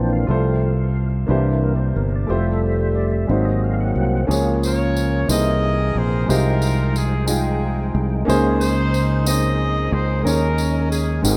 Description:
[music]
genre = slow gospel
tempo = 60 BPM (dotted quarters)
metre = 6/8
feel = straight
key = F major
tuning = A4 = 440 Hz
[part]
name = warm upright piano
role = accompaniment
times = 0.0-11.4 s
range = Ab2 to G5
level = -25 LUFS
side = equal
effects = none
[part]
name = tonewheel organ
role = sustained chords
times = 0.0-11.4 s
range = E3 to G5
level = -29 LUFS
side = equal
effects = slow rotary speaker, overdrive, chorus vibrato
[part]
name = fingered electric bass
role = bass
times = 0.0-11.4 s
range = F1 to Eb2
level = -22 LUFS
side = equal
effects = none
[part]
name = tambourine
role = percussion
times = 4.3-11.4 s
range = none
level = -32 LUFS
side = equal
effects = none
[part]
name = warm horn section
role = melody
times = 4.6-11.4 s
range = C4 to D#5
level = -27 LUFS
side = equal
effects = none
[sound]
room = light reverb, studio reverb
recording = rough home demo mix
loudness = -19 LUFS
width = mono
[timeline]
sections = 0.0-4.3 A section; 4.3-11.4 B section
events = tonewheel organ solo 0.0-4.3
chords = 0.3 F/C; 1.3 C9; 2.3 Fmaj9; 3.3 Ab7; 4.3 Db6; 5.3 C7alt; 6.3 Fm9/C; 8.3 Bbm11/Db; 10.2 Eb7sus4

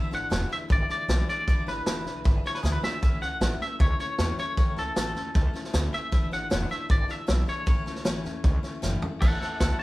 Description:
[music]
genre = rockabilly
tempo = 155 BPM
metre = 4/4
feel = straight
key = A major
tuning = A4 = 440 Hz
[part]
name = twangy electric guitar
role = melody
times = 0.0-9.8 s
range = G#4 to A5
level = -31 LUFS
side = equal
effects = harmonic tremolo
[part]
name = picked steel-string acoustic guitar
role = accompaniment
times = 0.0-9.8 s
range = E2 to E4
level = -36 LUFS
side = left 3 dB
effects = none
[part]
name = upright bass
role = bass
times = 0.0-9.8 s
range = E1 to E2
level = -29 LUFS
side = equal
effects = none
[part]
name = vintage drum kit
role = drums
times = 0.1-9.8 s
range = crash cymbal, hi-hat, kick drum, snare drum, toms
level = -26 LUFS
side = equal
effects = none
[sound]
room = moderate studio reverb, RT60 0.7 s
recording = band playing live in one room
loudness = -24 LUFS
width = side -19 dB against mid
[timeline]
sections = 0.0-9.2 A section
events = drum fill 2.6-3.0, 8.8-9.2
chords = 0.0 E7; 3.0 A; 6.1 E7; 7.7 A

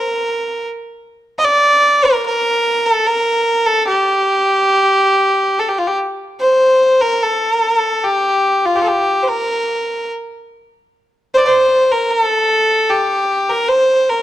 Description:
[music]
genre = caucasian folk, Caucasian lament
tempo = 68-78 BPM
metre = 3/4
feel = rubato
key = unclear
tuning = A4 = 440 Hz
[part]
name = rich fiddle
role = solo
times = 0.0-14.2 s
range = F4 to Eb5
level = -12 LUFS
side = equal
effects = none
[sound]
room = light reverb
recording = dark, warm production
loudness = -12 LUFS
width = side -13 dB against mid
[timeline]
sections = 0.0-6.4 A section; 6.4-14.2 B section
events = none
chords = none

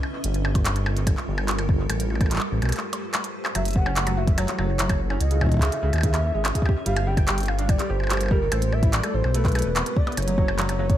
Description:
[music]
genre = IDM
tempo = 145 BPM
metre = 4/4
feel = straight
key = unclear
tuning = A4 = 439 Hz
[part]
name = granular cloud pad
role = sustained chords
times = 0.0-11.0 s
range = G3 to Bb4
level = -32 LUFS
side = equal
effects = built-in reverb
[part]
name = glitchy drum kit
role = drums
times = 0.0-11.0 s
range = handclaps, hi-hat, percussion blips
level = -28 LUFS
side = equal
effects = studio reverb, dub echo
[part]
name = dark detuned saw bass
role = bass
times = 0.2-11.0 s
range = E1 to D#2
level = -24 LUFS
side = equal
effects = none
[part]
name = electronic kick drum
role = drums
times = 0.6-11.0 s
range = none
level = -22 LUFS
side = equal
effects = studio reverb
[part]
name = warbly nostalgic lead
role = melody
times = 3.6-11.0 s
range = Bb4 to G5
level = -30 LUFS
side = equal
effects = chorus, dub echo
[part]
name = felt-muted upright piano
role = arpeggios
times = 3.6-10.8 s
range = C#3 to A4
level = -31 LUFS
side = right 1 dB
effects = tape echo
[sound]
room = digital ambience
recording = echo-heavy mix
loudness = -20 LUFS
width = side -12 dB against mid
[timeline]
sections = 0.0-11.0 A section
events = break 2.7-3.6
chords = 0.0 Gm9; 1.9 Am9; 3.6 F#m7; 5.2 C#m9; 6.7 Gm9; 8.5 Am9; 10.2 F#m7

